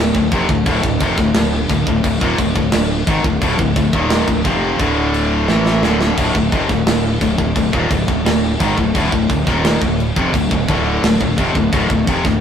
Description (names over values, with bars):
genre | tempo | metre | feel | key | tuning
heavy metal | 87 BPM | 4/4 | straight | D phrygian | A4 = 440 Hz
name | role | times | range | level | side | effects
fuzz guitar | riff | 0.0-12.4 s | D2 to A3 | -25 LUFS | right 2 dB | none
high-gain distorted guitar | riff | 0.0-12.4 s | D2 to A3 | -23 LUFS | right 2 dB | distortion
tight distorted guitar | riff | 0.0-12.4 s | D2 to A3 | -19 LUFS | left 5 dB | distortion
fuzz fingered electric bass | bass | 0.0-12.4 s | D1 to A1 | -21 LUFS | right 1 dB | overdrive
tight metal drum kit | drums | 0.1-12.4 s | crash cymbal, kick drum, snare drum | -18 LUFS | right 1 dB | none
room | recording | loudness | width
moderate studio reverb, RT60 0.6 s | rough rehearsal-room recording | -14 LUFS | side -8 dB against mid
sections
0.0-12.4 A section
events
drum fill 5.5-6.2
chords
0.0 Dm